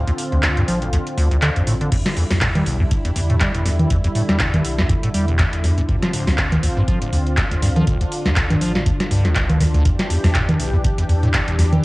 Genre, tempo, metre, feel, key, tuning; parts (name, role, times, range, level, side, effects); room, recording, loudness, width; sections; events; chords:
acid house; 121 BPM; 4/4; swing 56% on 16ths; E phrygian; A4 = 441 Hz
warm analog pad; sustained chords; 0.0-11.8 s; D3 to G4; -26 LUFS; equal; chorus, sidechain pumping, cassette tape
acid bass, square; riff; 0.0-11.6 s; D1 to G3; -19 LUFS; equal; sidechain pumping, cassette tape
warm sub bass; bass; 0.0-11.8 s; A1 to E2; -22 LUFS; equal; sidechain pumping
booming analog drum machine; drums; 0.1-11.8 s; congas, crash cymbal, handclaps, hi-hat, snare drum; -21 LUFS; equal
electronic kick drum; drums; 1.9-11.5 s; -22 LUFS; equal
little or no reverb; home recording on cassette; -16 LUFS; side -21 dB against mid
0.0-1.9 A section; 1.9-11.8 B section
break 0.0-1.9; drop 1.9-11.8
0.0 Dm7; 1.9 Em7; 5.9 Dm7; 9.9 Em7